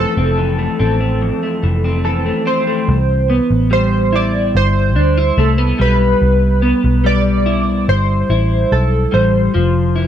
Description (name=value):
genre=indie pop, bedroom pop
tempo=72 BPM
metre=4/4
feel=straight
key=unclear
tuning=A4 = 439 Hz
part: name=chorused retro synth keys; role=melody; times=0.0-9.9 s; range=A4 to D5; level=-18 LUFS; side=right 1 dB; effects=tremolo, wide subtle chorus, plate reverb, tape echo
part: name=electric guitar through a small old amp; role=accompaniment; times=0.0-10.1 s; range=F2 to E4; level=-17 LUFS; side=left 1 dB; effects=analog chorus, warbly pitch drift, plate reverb
part: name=vintage muted picked electric bass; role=bass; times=0.0-10.1 s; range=F1 to D2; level=-15 LUFS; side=equal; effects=none
room=moderate small room reverb, RT60 0.5 s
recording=dark, warm production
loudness=-12 LUFS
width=side -10 dB against mid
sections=0.0-2.9 A section; 2.9-10.1 B section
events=none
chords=0.0 Fmaj7; 2.9 Cmaj7; 9.6 Fmaj7(no3)